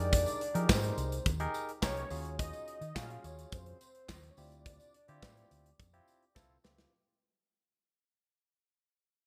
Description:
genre	early-eighties boogie funk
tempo	106 BPM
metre	4/4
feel	straight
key	unclear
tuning	A4 = 440 Hz
part	fat analog lead	melody	0.0-6.4 s	C5 to F5	-42 LUFS	equal	none
part	barky tine electric piano	accompaniment	0.0-6.9 s	C4 to Bb4	-45 LUFS	equal	none
part	vintage muted fingered electric bass	bass	0.0-6.8 s	C2 to F3	-41 LUFS	equal	none
part	modern studio drum kit	drums	0.1-6.9 s	handclaps, hi-hat, kick drum, snare drum	-35 LUFS	equal	gated reverb
part	tambourine	percussion	0.1-6.9 s	none	-51 LUFS	equal	none
room	light reverb, small room ambience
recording	bright 1980s-style digital production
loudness	-35 LUFS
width	mono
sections	0.0-6.9 A section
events	fade-out 0.0-6.9; drum fill 6.4-6.9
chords	0.0 Fm11; 2.1 Ebm11; 4.4 Dm11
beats	| 0.13 0.70 1.26 1.83 | 2.40 2.96 3.53 4.09 | 4.66 5.23 5.79 6.36

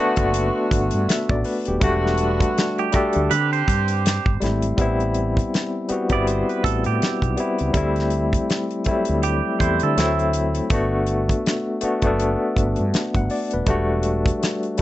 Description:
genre	R&B, neo-soul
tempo	81 BPM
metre	4/4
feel	swing 61% on 16ths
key	G major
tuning	A4 = 439 Hz
part	barky tine electric piano	accompaniment	0.0-14.8 s	F#3 to F#5	-21 LUFS	left 2 dB	overdrive, fast tremolo
part	warm horn section	stabs	0.0-4.4 s	D3 to G4	-28 LUFS	right 3 dB	none
part	mellow fretless electric bass	bass	0.2-14.8 s	Eb1 to D3	-23 LUFS	right 1 dB	none
part	damped 70s drum kit	drums	0.2-14.8 s	hi-hat, kick drum, snare drum	-23 LUFS	equal	none
part	twangy electric guitar	second line	2.8-10.2 s	G4 to D5	-25 LUFS	right 14 dB	spring reverb
room	little or no reverb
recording	nothing above 8.0 kHz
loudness	-18 LUFS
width	side -14 dB against mid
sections	0.0-4.8 A section; 4.8-14.8 B section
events	none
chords	0.0 Gmaj9; 1.8 Em11; 3.3 D7sus4; 4.8 Am9; 7.7 D9sus4; 10.0 D9; 10.7 Gmaj9; 13.7 Em11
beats	0.34 1.08 | 1.82 2.56 3.30 4.04 | 4.78 5.52 6.26 7.00 | 7.74 8.48 9.23 9.97 | 10.71 11.45 12.19 12.93 | 13.67 14.41

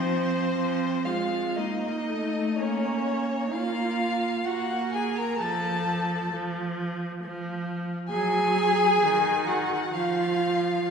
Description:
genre	classical, slow romantic movement for string quartet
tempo	57-68 BPM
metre	3/4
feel	rubato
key	Bb minor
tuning	A4 = 440 Hz
part	rich violin	melody	0.0-10.9 s	C5 to Bb5	-33 LUFS	left 6 dB	none
part	rich violin	second line	0.0-10.9 s	C5 to Bb5	-32 LUFS	left 4 dB	none
part	clear viola	accompaniment	0.0-10.8 s	Eb3 to Bb3	-29 LUFS	right 1 dB	none
part	dark cello	bass	0.0-10.9 s	C4 to Bb4	-27 LUFS	right 3 dB	none
room	wet concert hall reverb, RT60 2.1 s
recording	recorded in a church or concert hall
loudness	-24 LUFS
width	side -6 dB against mid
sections	0.0-10.9 A section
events	none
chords	0.0 F5; 1.6 Eb5; 2.6 Bbm; 5.4 F; 8.1 Gbsus2; 9.0 Ebmadd11; 9.9 N.C.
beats	0.54 1.57 | 2.58 3.53 4.46 | 5.39 6.32 7.22 | 8.10 9.01 9.93

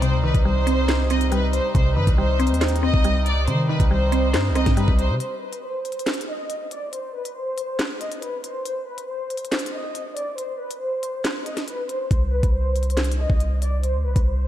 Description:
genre	hip hop, drill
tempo	139 BPM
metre	4/4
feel	half-time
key	C harmonic minor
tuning	A4 = 440 Hz
part	rich studio violin section	melody	0.0-14.5 s	B4 to Eb5	-27 LUFS	left 1 dB	low-pass filter, ping-pong delay
part	mallet-like synth pluck	accompaniment	0.0-5.2 s	C3 to C5	-24 LUFS	right 1 dB	chorus
part	accordion	sustained chords	0.0-5.2 s	C3 to Eb4	-31 LUFS	equal	light tremolo tuning
part	long sustained 808-style bass	bass	0.0-5.2, 12.1-14.5 s	C2 to Eb3	-21 LUFS	equal	none
part	drill drum kit	drums	0.0-14.3 s	handclaps, hi-hat, kick drum, rim click, snare drum	-24 LUFS	equal	none
room	light reverb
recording	none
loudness	-20 LUFS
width	side -12 dB against mid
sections	0.0-5.2 A section; 5.2-14.5 B section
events	break 5.2-12.1; filter sweep on violin section 5.2-14.5; kick muted 11.2-12.1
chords	0.0 Cm; 5.2 N.C.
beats	| 0.02 0.45 0.89 1.32 | 1.75 2.18 2.61 3.04 | 3.48 3.91 4.34 4.77 | 5.20 5.63 6.07 6.50 | 6.93 7.36 7.79 8.22 | 8.65 9.09 9.52 9.95 | 10.38 10.81 11.24 11.68 | 12.11 12.54 12.97 13.40 | 13.84 14.27

